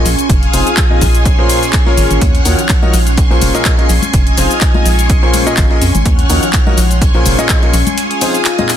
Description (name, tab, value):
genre	piano house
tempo	125 BPM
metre	4/4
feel	swing 55% on 16ths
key	Bb minor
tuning	A4 = 441 Hz
part	string machine, violins	sustained chords	0.0-8.8 s	Ab4 to F6	-19 LUFS	equal	ensemble chorus, sidechain pumping
part	warm concert grand piano	riff	0.0-8.7 s	Bb2 to Eb5	-18 LUFS	left 2 dB	sidechain pumping, tape echo
part	airy breathy pad	texture	0.0-8.8 s	F3 to C6	-20 LUFS	equal	chorus, sidechain pumping
part	organ-like FM bass	bass	0.1-7.8 s	F1 to F2	-14 LUFS	equal	sidechain pumping
part	breakbeat sampler-style drum kit	drums	0.1-8.8 s	hi-hat, snare drum	-26 LUFS	right 2 dB	none
part	house drum kit	drums	0.1-8.8 s	handclaps, hi-hat, shaker	-18 LUFS	left 2 dB	none
part	electronic kick drum	drums	0.3-7.6 s	none	-12 LUFS	equal	none
part	tambourine and congas	percussion	2.2-8.8 s	none	-24 LUFS	left 8 dB	none
room	little or no reverb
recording	dense, heavily limited modern master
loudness	-9 LUFS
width	side -10 dB against mid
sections	0.0-8.8 A section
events	break 8.0-8.8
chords	0.3 Fm7; 1.0 Bbm9; 2.2 Ebm9; 2.9 Bbm9; 4.1 Fm7; 4.9 Bbm9; 6.1 Ebm9; 6.8 Bbm9; 8.0 Fm7